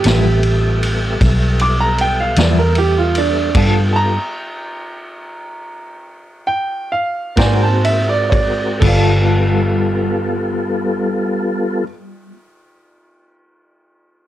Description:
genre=slow blues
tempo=40-52 BPM (dotted quarters)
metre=12/8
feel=straight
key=G mixolydian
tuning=A4 = 439 Hz
part: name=clear upright piano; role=accompaniment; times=0.0-11.9 s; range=Bb3 to D6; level=-20 LUFS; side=right 4 dB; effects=none
part: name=tonewheel organ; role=sustained chords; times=0.0-11.9 s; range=G3 to E5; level=-21 LUFS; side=left 1 dB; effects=slow rotary speaker, chorus vibrato
part: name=vintage drum kit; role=drums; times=0.0-9.1 s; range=crash cymbal, kick drum, ride cymbal, snare drum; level=-20 LUFS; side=equal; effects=none
part: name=clean electric guitar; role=accompaniment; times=0.1-12.4 s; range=G2 to Bb4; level=-22 LUFS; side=left 3 dB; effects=tremolo
part: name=vintage muted fingered electric bass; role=bass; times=0.1-11.8 s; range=G1 to Ab2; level=-16 LUFS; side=equal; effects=none
room=little or no reverb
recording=dark, warm production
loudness=-13 LUFS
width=side -13 dB against mid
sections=0.0-8.8 A section; 8.8-14.3 B section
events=upright piano solo 0.0-8.8; slowing down 2.0-8.8; stop 3.5-7.4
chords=0.0 G13; 3.5 G9; 7.4 Ab9; 8.8 G9

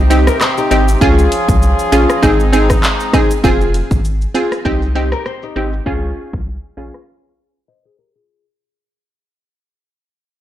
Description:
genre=dancehall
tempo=99 BPM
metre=4/4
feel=swing 56% on 16ths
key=F minor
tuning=A4 = 440 Hz
part: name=wavetable chord stab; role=accompaniment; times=0.0-7.0 s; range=C4 to Ab4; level=-16 LUFS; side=equal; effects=none
part: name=clear brass ensemble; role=sustained chords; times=0.0-3.4 s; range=C3 to Ab4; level=-19 LUFS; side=equal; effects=sidechain pumping
part: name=warm sub bass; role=bass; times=0.0-6.9 s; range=F1 to Db2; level=-16 LUFS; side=equal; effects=none
part: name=pop drum kit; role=drums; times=0.1-7.1 s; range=handclaps, hi-hat, kick drum, rim click, shaker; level=-16 LUFS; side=equal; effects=soft clipping on snare
part: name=nylon-string guitar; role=arpeggios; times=0.3-1.0, 5.1-8.4 s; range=Eb4 to Eb5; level=-22 LUFS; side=left 6 dB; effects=none
room=light reverb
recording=blown-out, overdriven recording, overdrive, low-pass filter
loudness=-11 LUFS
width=side -12 dB against mid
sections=0.0-3.4 A section; 3.4-8.3 B section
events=fade-out 3.4-8.3; break 7.1-8.3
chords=0.0 Cm; 1.0 Db; 2.2 Ab; 3.4 Fm; 4.7 Cm; 5.9 Db; 7.1 N.C.

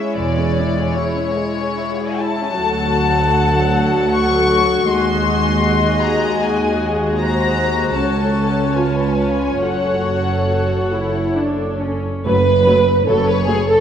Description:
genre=classical, slow romantic movement for string orchestra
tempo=67-79 BPM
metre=3/4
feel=rubato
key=F# minor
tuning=A4 = 441 Hz
part: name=warm studio violin section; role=melody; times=0.0-13.8 s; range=C#5 to C#6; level=-22 LUFS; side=left 6 dB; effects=none
part: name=dark studio violin section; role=second line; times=0.0-13.8 s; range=G#3 to F#5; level=-20 LUFS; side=equal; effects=none
part: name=warm studio viola section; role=accompaniment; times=0.0-13.6 s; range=F#3 to F#4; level=-20 LUFS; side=left 1 dB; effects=none
part: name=rich studio double bass section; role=bass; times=0.2-13.8 s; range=E1 to D#2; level=-23 LUFS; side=right 3 dB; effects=none
part: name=warm studio cello section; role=bass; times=0.2-13.8 s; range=C#2 to F#2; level=-23 LUFS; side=right 3 dB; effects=none
room=moderate concert hall reverb, RT60 2.0 s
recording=dark, warm production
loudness=-15 LUFS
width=side -8 dB against mid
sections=0.0-12.2 A section; 12.2-13.8 A section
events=none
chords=0.2 C#m/E; 2.6 D; 4.9 G#7/D#; 8.0 F#m/C#; 8.8 C#7; 9.6 F#m

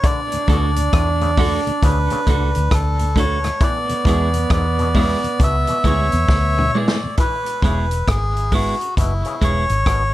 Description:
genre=roots reggae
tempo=67 BPM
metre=4/4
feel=swing 63% on 16ths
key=E mixolydian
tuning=A4 = 438 Hz
part: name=melodica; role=melody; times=0.0-10.1 s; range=E4 to E5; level=-22 LUFS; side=left 1 dB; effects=tape echo
part: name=clear trombone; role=second line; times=0.0-6.7 s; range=B3 to D4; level=-25 LUFS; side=right 8 dB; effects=tape echo
part: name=auto-wah clav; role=arpeggios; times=0.0-10.0 s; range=G#2 to E3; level=-29 LUFS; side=left 7 dB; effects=none
part: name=vintage drum kit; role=drums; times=0.0-10.1 s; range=hi-hat, kick drum, rim click, snare drum, toms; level=-20 LUFS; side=equal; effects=none
part: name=mellow tonewheel organ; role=accompaniment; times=0.3-7.1 s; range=D2 to F#4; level=-28 LUFS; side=left 2 dB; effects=chorus vibrato, slow rotary speaker
part: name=clean electric guitar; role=accompaniment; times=0.5-9.6 s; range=G#3 to A4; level=-26 LUFS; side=right 4 dB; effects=tape echo
part: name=vintage muted fingered electric bass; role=bass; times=0.5-10.1 s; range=E1 to E2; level=-20 LUFS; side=equal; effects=none
room=light reverb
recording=none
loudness=-15 LUFS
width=side -15 dB against mid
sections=0.0-7.2 A section; 7.2-10.1 B section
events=drum fill 6.3-7.2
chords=0.0 D; 3.6 E

